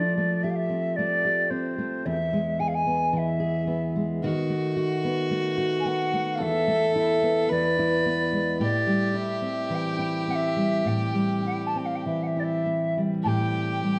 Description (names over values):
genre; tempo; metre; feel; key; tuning
celtic folk, Celtic slow air; 49-56 BPM; 4/4; rubato; A minor; A4 = 440 Hz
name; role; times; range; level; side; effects
wooden flute; melody; 0.0-14.0 s; C5 to A5; -30 LUFS; equal; none
fingerpicked steel-string acoustic guitar; accompaniment; 0.0-14.0 s; E2 to G#4; -29 LUFS; equal; none
rich fiddle; second line; 4.2-14.0 s; F#4 to B4; -31 LUFS; equal; none
room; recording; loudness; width
moderate scoring stage reverb, RT60 1.6 s; dark, warm production; -26 LUFS; mono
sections
0.0-13.2 A section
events
none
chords
0.0 Fadd9; 2.1 E; 4.2 B7; 6.4 Esus4; 7.5 E; 8.6 Am7